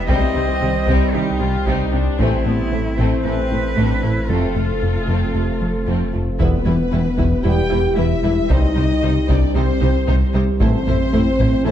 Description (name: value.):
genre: cinematic, hybrid orchestral and electronic film score.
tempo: 114 BPM.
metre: 4/4.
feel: straight.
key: E phrygian.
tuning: A4 = 441 Hz.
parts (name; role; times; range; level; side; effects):
warm cello; melody; 0.0-6.1 s; E4 to Eb5; -27 LUFS; right 2 dB; tape echo.
rich studio viola section; accompaniment; 0.0-11.7 s; G3 to F4; -28 LUFS; left 1 dB; none.
analog drone; sustained chords; 0.0-11.7 s; G3 to C5; -27 LUFS; right 1 dB; chorus.
saturated sub bass; bass; 0.0-11.7 s; E1 to C2; -24 LUFS; equal; none.
warm symphonic violin section; second line; 0.1-11.7 s; G3 to A5; -27 LUFS; left 4 dB; none.
mellow French horn section; sustained chords; 0.1-11.7 s; A3 to A4; -23 LUFS; left 2 dB; none.
mellow trombone section; sustained chords; 0.1-11.7 s; C3 to C4; -31 LUFS; right 1 dB; none.
tight sequenced synth; arpeggios; 0.1-11.7 s; C3 to A4; -28 LUFS; right 1 dB; none.
round analog bass; riff; 0.1-11.7 s; C2 to A3; -22 LUFS; left 2 dB; none.
rich symphonic cello section; bass; 0.1-11.7 s; E2 to C3; -27 LUFS; right 3 dB; none.
rich symphonic double bass section; bass; 0.1-11.7 s; E1 to C2; -26 LUFS; right 3 dB; none.
solo taiko drums; drums; 0.1-11.7 s; none; -24 LUFS; equal; none.
warm symphonic violin section; melody; 6.4-11.7 s; B4 to C5; -32 LUFS; left 5 dB; none.
room: moderate scoring stage reverb, RT60 1.5 s.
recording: dark, warm production.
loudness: -15 LUFS.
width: side -10 dB against mid.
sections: 0.0-6.4 A section; 6.4-11.7 B section.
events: none.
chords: 0.1 Cm; 2.2 Am; 4.3 F; 6.4 Em; 8.5 Cm; 10.6 Am.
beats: | 0.09 0.61 1.14 1.66 | 2.19 2.72 3.24 3.77 | 4.29 4.82 5.35 5.87 | 6.40 6.93 7.45 7.98 | 8.51 9.03 9.56 10.09 | 10.61 11.14 11.66.